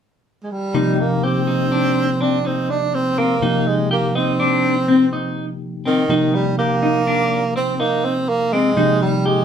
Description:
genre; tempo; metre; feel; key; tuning
progressive instrumental, progressive; 247 BPM (eighths); 11/8; straight; C minor; A4 = 439 Hz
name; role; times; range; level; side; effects
breathy tenor saxophone; melody; 0.4-9.4 s; Eb3 to D4; -20 LUFS; right 3 dB; none
bell-like tine electric piano; accompaniment; 0.7-9.4 s; C3 to G4; -22 LUFS; left 2 dB; medium stereo tremolo
clean electric guitar; arpeggios; 0.7-9.4 s; C4 to G4; -20 LUFS; left 1 dB; phaser
room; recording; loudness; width
moderate studio ambience, RT60 0.5 s; band playing live in one room, lossy compression artefacts; -16 LUFS; side -8 dB against mid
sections
0.7-9.4 A section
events
none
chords
0.0 N.C.; 0.7 Cm7

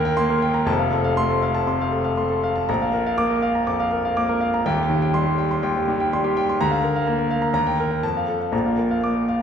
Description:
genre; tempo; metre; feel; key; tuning
classical, virtuoso piano study; 122 BPM; 4/4; rubato; Bb major; A4 = 439 Hz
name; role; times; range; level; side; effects
clear grand piano; solo; 0.0-9.4 s; Eb1 to D6; -19 LUFS; equal; none
room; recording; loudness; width
wet recital hall reverb, RT60 1.8 s; heard from further back in the room; -19 LUFS; side -7 dB against mid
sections
0.0-9.4 A section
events
none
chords
0.0 Cm7/Eb; 0.7 F; 2.7 Bb; 4.6 Cm/Eb; 6.6 Bb/D; 7.5 Eb; 8.0 F; 8.5 Bb

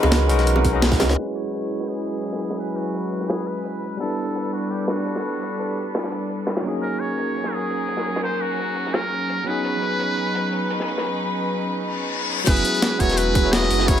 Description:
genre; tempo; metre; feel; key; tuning
liquid drum and bass; 170 BPM; 4/4; swing 54% on 16ths; unclear; A4 = 439 Hz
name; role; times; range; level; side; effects
barky tine electric piano; accompaniment; 0.0-14.0 s; F#3 to D#5; -25 LUFS; equal; slow stereo tremolo, ping-pong delay
rich chamber string section; sustained chords; 0.0-14.0 s; F#3 to B4; -28 LUFS; equal; none
warm sub bass; bass; 0.0-1.2, 12.5-14.0 s; E1 to C#2; -21 LUFS; equal; tube saturation
crunchy breakbeat drum kit; drums; 0.0-14.0 s; hi-hat, snare drum; -30 LUFS; equal; high-pass filter on hats, low-pass filter on hats, small room reverb, high-pass filter on snare, low-pass filter on snare, high-pass filter on room, low-pass filter on room
bongos; percussion; 0.0-1.1 s; none; -25 LUFS; right 1 dB; none
breakbeat sampler-style drum kit; drums; 0.1-14.0 s; crash cymbal, hi-hat, snare drum; -24 LUFS; left 1 dB; low-pass filter on hats, small room reverb, low-pass filter on snare, low-pass filter on cymbals
electronic kick drum; drums; 0.6-1.0, 12.5-14.0 s; none; -20 LUFS; equal; overdrive, small room reverb
trumpet with metal mute; melody; 1.2-14.0 s; F#4 to D#5; -27 LUFS; equal; digital delay
reverse cymbal; sound effects; 11.9-12.5 s; none; -26 LUFS; left 6 dB; none
room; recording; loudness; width
light reverb, studio ambience; low-pass filter; -20 LUFS; side -10 dB against mid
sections
0.0-1.2 A section; 1.2-12.5 B section; 12.5-14.0 A section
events
drop 0.0-1.2, 12.5-14.0; band accent 0.8; filter sweep 1.2-12.5; reverse cymbal 11.9-12.5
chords
0.0 C#9sus4; 1.2 F#9sus4; 4.0 A9sus4; 6.6 G#9sus4; 9.5 C#9sus4; 12.5 F#9sus4

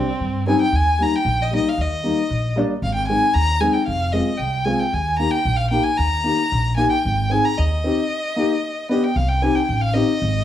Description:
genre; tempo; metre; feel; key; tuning
klezmer; 114 BPM; 2/4; straight; Eb major; A4 = 440 Hz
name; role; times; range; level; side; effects
warm violin; melody; 0.0-10.4 s; C4 to Bb5; -22 LUFS; equal; plate reverb
dark upright piano; accompaniment; 0.0-10.1 s; G3 to Ab4; -22 LUFS; left 3 dB; plate reverb
upright bass; bass; 0.2-10.4 s; F1 to G2; -22 LUFS; equal; none
room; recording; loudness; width
wet studio reverb, RT60 0.6 s; studio ambience; -17 LUFS; side -11 dB against mid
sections
0.7-9.2 A section; 9.2-10.4 B section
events
break 8.1-9.2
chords
0.0 Cm; 0.7 Eb; 2.8 Ab; 3.9 Fm; 4.9 Eb; 7.1 Ab; 8.1 Eb; 8.6 G; 9.2 Cm

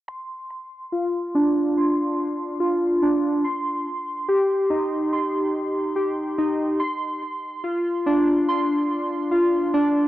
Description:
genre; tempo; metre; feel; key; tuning
hip hop; 143 BPM; 4/4; half-time; D phrygian; A4 = 440 Hz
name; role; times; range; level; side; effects
warbly lo-fi synth keys; arpeggios; 0.1-10.1 s; D4 to C6; -20 LUFS; equal; chorus, low-pass filter, analog delay
room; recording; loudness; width
moderate booth ambience, RT60 0.2 s; dry, gritty hardware recording, cassette tape; -20 LUFS; side -14 dB against mid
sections
0.1-10.1 A section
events
filter sweep on synth keys 0.1-10.1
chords
0.1 Dm7; 3.4 Eb6; 6.8 Dm7

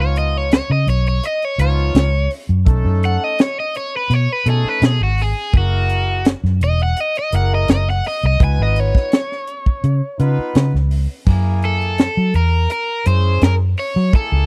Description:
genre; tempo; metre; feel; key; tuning
straight-eighth soul blues; 84 BPM; 4/4; straight; F# mixolydian; A4 = 439 Hz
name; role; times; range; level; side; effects
cranked stack guitar; melody; 0.0-14.5 s; F#4 to G#5; -23 LUFS; equal; overdrive
clear horn section; sustained chords; 0.0-14.5 s; E#3 to G#5; -30 LUFS; equal; none
vintage muted fingered electric bass; bass; 0.0-14.5 s; E1 to F#3; -18 LUFS; equal; none
tight funk drum kit; drums; 0.2-14.3 s; crash cymbal, hi-hat, kick drum, snare drum; -17 LUFS; equal; none
room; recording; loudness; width
studio reverb; dry, close 1970s-style studio recording; -17 LUFS; mono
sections
0.0-11.3 A section; 11.3-14.5 B section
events
overdriven electric guitar solo 0.0-11.3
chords
0.0 C#9; 2.7 B9; 5.5 F#9; 8.4 C#9; 11.3 F#9

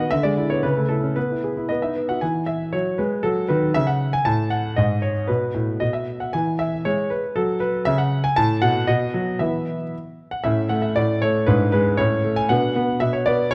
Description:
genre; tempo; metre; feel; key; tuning
classical-period piano sonatina; 117 BPM; 2/4; straight; E major, A major from 10.4 s; A4 = 437 Hz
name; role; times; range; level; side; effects
warm concert grand piano; solo; 0.0-13.5 s; G#2 to A5; -22 LUFS; equal; none
room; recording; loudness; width
moderate recital hall reverb, RT60 1.7 s; dark, warm production; -22 LUFS; mono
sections
0.0-2.2 A section; 2.2-10.4 B section; 10.4-13.5 A section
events
none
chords
0.1 E7/D; 0.6 A/C#; 1.2 E/B; 1.7 B; 2.2 E; 3.2 F#5; 4.3 N.C.; 5.3 Asus2; 5.8 N.C.; 6.3 E; 7.4 F#5; 8.4 B5/A; 8.9 B; 9.4 E5; 10.4 A; 11.5 E7/G#; 12.0 A; 12.5 Bm

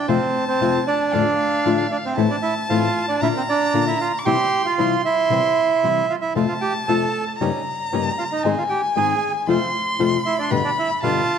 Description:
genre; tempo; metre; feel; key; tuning
tango; 115 BPM; 4/4; rubato; F major; A4 = 437 Hz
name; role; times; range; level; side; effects
bandoneon; melody; 0.0-11.4 s; C4 to A5; -20 LUFS; right 4 dB; none
warm violin; second line; 0.0-11.4 s; F5 to D6; -25 LUFS; left 2 dB; none
nylon-string guitar; accompaniment; 0.1-11.2 s; F2 to Ab4; -23 LUFS; left 6 dB; none
bandoneon; stabs; 0.1-11.3 s; F2 to G4; -32 LUFS; right 6 dB; none
room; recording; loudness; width
moderate scoring stage reverb, RT60 1.7 s; none; -18 LUFS; side -7 dB against mid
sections
0.0-11.4 A section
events
none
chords
0.1 F; 2.2 Am; 3.2 Bb; 4.3 C; 6.4 F; 7.4 Eb7/G; 8.4 Ab; 9.5 F; 10.5 G

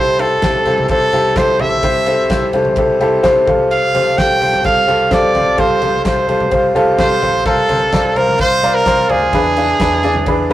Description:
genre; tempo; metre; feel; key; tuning
piano-driven pop; 128 BPM; 4/4; straight; unclear; A4 = 440 Hz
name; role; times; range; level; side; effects
brilliant trumpet; melody; 0.0-10.5 s; Ab4 to G5; -15 LUFS; right 1 dB; none
clear upright piano; accompaniment; 0.0-10.5 s; C3 to D5; -14 LUFS; left 1 dB; none
vintage muted picked electric bass; bass; 0.0-10.5 s; Bb1 to E2; -25 LUFS; right 1 dB; none
loose indie drum kit; drums; 0.2-10.5 s; kick drum, ride cymbal, snare drum, toms; -22 LUFS; equal; none
room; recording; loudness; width
moderate studio ambience, RT60 0.5 s; rough rehearsal-room recording, warm saturation; -11 LUFS; side -14 dB against mid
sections
0.0-10.5 A section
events
none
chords
0.0 C6; 3.5 Fadd9; 7.5 Bbsus2/C; 9.3 E7

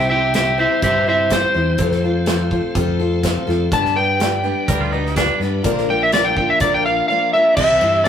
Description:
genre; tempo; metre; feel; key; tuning
folk rock and heartland rock; 125 BPM; 4/4; straight; C mixolydian; A4 = 437 Hz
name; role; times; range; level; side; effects
electric slide guitar; melody; 0.0-8.1 s; C5 to A5; -16 LUFS; equal; slapback echo
bright grand piano; accompaniment; 0.0-8.1 s; E4 to C6; -30 LUFS; equal; none
picked steel-string acoustic guitar; accompaniment; 0.0-8.1 s; G2 to C5; -23 LUFS; left 3 dB; none
tonewheel organ; sustained chords; 0.0-8.1 s; E3 to C5; -30 LUFS; equal; slow rotary speaker, chorus vibrato
picked electric bass; bass; 0.0-8.1 s; Bb1 to G2; -23 LUFS; equal; none
natural country drum kit; drums; 0.3-8.1 s; crash cymbal, hi-hat, kick drum, ride cymbal, snare drum; -23 LUFS; right 1 dB; none
twangy electric guitar; second line; 4.7-5.4 s; D4 to Bb4; -22 LUFS; right 4 dB; none
room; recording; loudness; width
moderate studio reverb, RT60 0.5 s; rough rehearsal-room recording; -15 LUFS; side -8 dB against mid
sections
0.0-7.6 A section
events
electric slide guitar solo 0.0-7.6; grand piano fill 2.3-3.7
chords
0.0 C; 1.8 F; 3.7 G; 5.6 Bb; 7.6 C

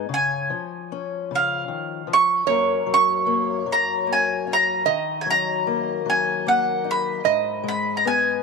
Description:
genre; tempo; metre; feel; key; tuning
acoustic folk duo or small band; 50 BPM (dotted quarters); 6/8; straight; F# major; A4 = 441 Hz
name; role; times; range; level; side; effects
mandolin; melody; 0.0-8.4 s; E#5 to C#6; -21 LUFS; right 1 dB; none
fingerpicked acoustic archtop guitar; accompaniment; 0.0-8.4 s; F#2 to A#4; -27 LUFS; left 11 dB; none
metal-body resonator slide guitar; second line; 2.5-8.4 s; C#5 to D#5; -25 LUFS; right 14 dB; none
room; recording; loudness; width
wet spring reverb, RT60 2.6 s; 1960s-style stereo with parts hard left and right; -19 LUFS; side -4 dB against mid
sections
0.0-8.4 A section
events
none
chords
0.1 C#; 2.5 F#; 4.9 D#m; 7.3 G#m

